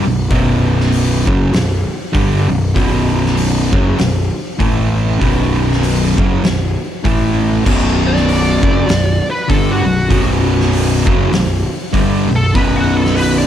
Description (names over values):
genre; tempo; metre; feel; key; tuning
stoner and doom metal; 98 BPM; 4/4; swing 58% on 8ths; B minor; A4 = 438 Hz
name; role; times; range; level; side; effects
fuzz guitar; riff; 0.0-13.5 s; B1 to A3; -15 LUFS; equal; distortion
fuzz picked electric bass; bass; 0.0-13.5 s; B0 to A1; -18 LUFS; equal; overdrive
oversized low-tuned drum kit; drums; 0.3-13.3 s; crash cymbal, hi-hat, kick drum, snare drum; -18 LUFS; equal; none
fuzz lead guitar; melody; 8.1-13.5 s; F#4 to D5; -20 LUFS; equal; wah, distortion, tape echo
room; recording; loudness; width
small room ambience; dark, warm production; -12 LUFS; side -10 dB against mid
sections
0.0-7.7 A section; 7.7-13.5 B section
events
lead electric guitar solo 7.7-13.5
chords
0.0 B5; 4.6 A5; 5.2 B5; 7.0 A5; 7.7 Bm